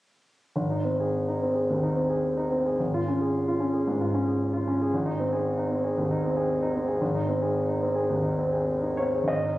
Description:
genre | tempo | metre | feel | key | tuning
classical, romantic character piece for solo piano | 91-118 BPM | 4/4 | rubato | Ab major | A4 = 435 Hz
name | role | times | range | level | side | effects
warm grand piano | solo | 0.6-9.6 s | Ab1 to Eb5 | -24 LUFS | equal | none
room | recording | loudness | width
moderate recital hall reverb, RT60 1.5 s | recorded on a phone in the room, studio reverb, compression | -24 LUFS | side -16 dB against mid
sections
0.6-9.3 A section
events
none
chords
0.6 Ab; 2.8 Db/Ab; 4.9 Ab

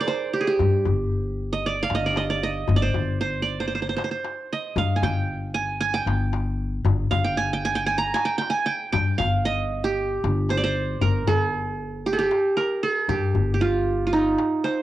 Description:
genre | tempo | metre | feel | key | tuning
Arabic maqam ensemble | 115 BPM | 4/4 | straight | G maqam kurd, G maqam bayati from 11.0 s | A4 = 440 Hz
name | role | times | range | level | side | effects
qanun | melody | 0.0-14.8 s | Eb4 to Bb5 | -23 LUFS | right 3 dB | cassette tape
darbuka | percussion | 0.1-14.8 s | none | -27 LUFS | left 5 dB | none
upright bass | bass | 0.6-14.3 s | G1 to G2 | -26 LUFS | left 1 dB | none
room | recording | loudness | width
moderate spring reverb, RT60 1.3 s, studio ambience | home recording on cassette | -21 LUFS | side -14 dB against mid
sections
0.0-11.0 A section; 11.0-14.8 B section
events
none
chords
none

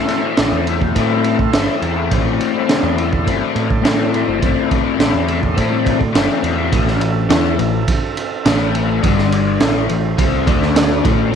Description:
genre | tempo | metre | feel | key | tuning
psychedelic rock | 104 BPM | 4/4 | straight | A minor | A4 = 445 Hz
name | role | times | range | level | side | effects
tonewheel organ | sustained chords | 0.0-11.4 s | G3 to C6 | -26 LUFS | right 11 dB | slow rotary speaker, overdrive
raw garage guitar | riff | 0.0-11.4 s | G2 to E4 | -18 LUFS | left 11 dB | overdrive, rotary speaker
crunchy breakbeat drum kit | drums | 0.1-11.2 s | kick drum, ride cymbal, snare drum | -18 LUFS | right 3 dB | none
growling picked electric bass | bass | 0.4-11.3 s | G1 to A2 | -20 LUFS | right 3 dB | overdrive
room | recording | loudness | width
light reverb | 1960s-style stereo with parts hard left and right | -14 LUFS | side -7 dB against mid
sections
0.0-6.7 A section; 6.7-11.4 B section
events
none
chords
0.0 Am; 9.0 G5; 9.6 Am; 10.5 D5

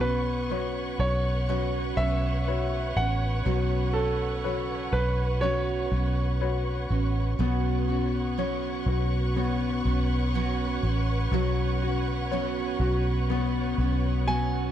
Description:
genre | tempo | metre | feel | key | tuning
pop ballad | 61 BPM | 4/4 | straight | unclear | A4 = 440 Hz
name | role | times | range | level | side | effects
warm concert grand piano | melody | 0.0-6.9, 14.3-14.7 s | A4 to G#5 | -31 LUFS | right 2 dB | tape echo
clear upright piano | accompaniment | 0.0-14.7 s | F#3 to C#5 | -32 LUFS | left 9 dB | none
warm studio string section | sustained chords | 0.0-14.7 s | B4 to C#6 | -35 LUFS | equal | none
picked steel-string acoustic guitar | arpeggios | 0.0-14.7 s | B2 to F#4 | -33 LUFS | right 11 dB | none
vintage muted fingered electric bass | bass | 0.0-14.7 s | A1 to B1 | -27 LUFS | equal | none
room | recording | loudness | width
small room ambience | dry, close 1970s-style studio recording | -24 LUFS | side -10 dB against mid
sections
0.0-7.4 A section; 7.4-14.7 B section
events
none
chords
0.0 Bsus2

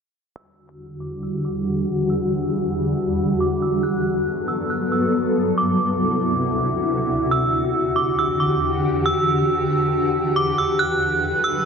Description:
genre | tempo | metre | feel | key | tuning
hip hop | 138 BPM | 4/4 | half-time | E minor | A4 = 438 Hz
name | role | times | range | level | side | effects
metallic FM bell | melody | 0.4-11.7 s | D6 to F#6 | -23 LUFS | right 2 dB | chorus, low-pass filter, ping-pong delay
granular cloud pad | sustained chords | 1.0-11.7 s | D2 to B4 | -20 LUFS | left 1 dB | built-in reverb, low-pass filter
room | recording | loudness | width
wet lush hall reverb, RT60 2.6 s | none | -18 LUFS | side -6 dB against mid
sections
0.4-11.7 A section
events
filter sweep 0.4-11.7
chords
0.4 Em9; 3.8 Gmaj9; 5.6 D9; 7.3 Em9; 10.8 Gmaj9

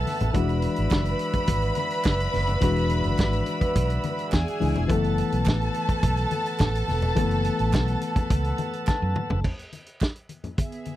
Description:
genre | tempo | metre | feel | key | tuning
disco | 106 BPM | 4/4 | straight | unclear | A4 = 440 Hz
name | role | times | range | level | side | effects
warm studio string section | second line | 0.0-11.0 s | B3 to B5 | -29 LUFS | right 1 dB | none
overdriven reed electric piano | accompaniment | 0.0-9.5 s | E3 to A5 | -29 LUFS | left 5 dB | none
tonewheel organ | sustained chords | 0.0-9.4 s | B4 to E6 | -34 LUFS | right 1 dB | slow rotary speaker
fretless electric bass | bass | 0.0-9.4 s | E1 to F#2 | -26 LUFS | right 1 dB | none
warm soul drum kit | drums | 0.1-11.0 s | crash cymbal, hi-hat, kick drum, snare drum, toms | -25 LUFS | right 1 dB | none
congas | percussion | 0.1-11.0 s | none | -34 LUFS | left 4 dB | none
group handclap | percussion | 0.9-10.1 s | none | -40 LUFS | right 10 dB | none
room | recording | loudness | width
little or no reverb | dry, close 1970s-style studio recording | -22 LUFS | side -14 dB against mid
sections
0.0-9.4 A section; 9.4-11.0 B section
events
reed electric piano fill 8.6-9.4; drum fill 8.9-9.4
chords
0.3 E9; 4.9 F#m7; 9.4 E

